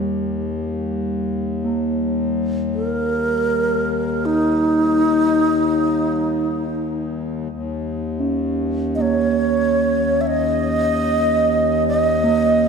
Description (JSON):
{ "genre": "world meditative, free-time meditation music", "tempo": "free time", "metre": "none", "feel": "none", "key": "unclear", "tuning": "A4 = 443 Hz", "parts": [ { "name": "hand-pumped harmonium", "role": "drone", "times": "0.0-12.7 s", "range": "Eb2", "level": "-24 LUFS", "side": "left 4 dB", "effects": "stereo widening" }, { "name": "quartz singing bowl", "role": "texture", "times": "0.0-12.7 s", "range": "G3 to Db4", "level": "-24 LUFS", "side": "right 4 dB", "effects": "none" }, { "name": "breathy bright wooden-headed alto flute", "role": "melody", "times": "2.7-12.7 s", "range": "Eb4 to Fb5", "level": "-18 LUFS", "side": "right 1 dB", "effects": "tape echo" } ], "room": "wet church reverb, RT60 3.6 s", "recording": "dark, warm production", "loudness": "-17 LUFS", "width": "side -6 dB against mid", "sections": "0.0-7.5 A section; 7.5-12.7 A section", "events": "none", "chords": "none", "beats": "free time" }